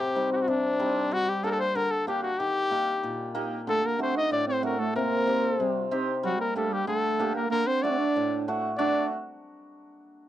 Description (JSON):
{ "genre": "klezmer", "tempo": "94 BPM", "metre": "2/4", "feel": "straight", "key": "D phrygian dominant", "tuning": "A4 = 439 Hz", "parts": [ { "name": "warm cornet", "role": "melody", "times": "0.0-9.1 s", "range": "D4 to Eb5", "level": "-27 LUFS", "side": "left 2 dB", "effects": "none" }, { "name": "hammered dulcimer", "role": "accompaniment", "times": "0.0-9.1 s", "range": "A2 to G4", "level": "-29 LUFS", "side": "equal", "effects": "none" }, { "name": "trombone with bucket mute", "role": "second line", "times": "3.7-9.1 s", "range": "F#3 to Eb4", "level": "-30 LUFS", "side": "right 7 dB", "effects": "none" } ], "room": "light reverb", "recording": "dry, close 1970s-style studio recording", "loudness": "-24 LUFS", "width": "side -12 dB against mid", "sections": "0.0-8.8 A section; 8.8-10.1 B section", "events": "none", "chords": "0.0 Cm; 1.1 Gm; 2.4 Eb; 3.7 D; 5.0 Cm; 6.2 Gm; 7.5 D", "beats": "0.48 | 1.12 1.76 | 2.40 3.04 | 3.67 4.31 | 4.95 5.59 | 6.23 6.87 | 7.51 8.14 | 8.78" }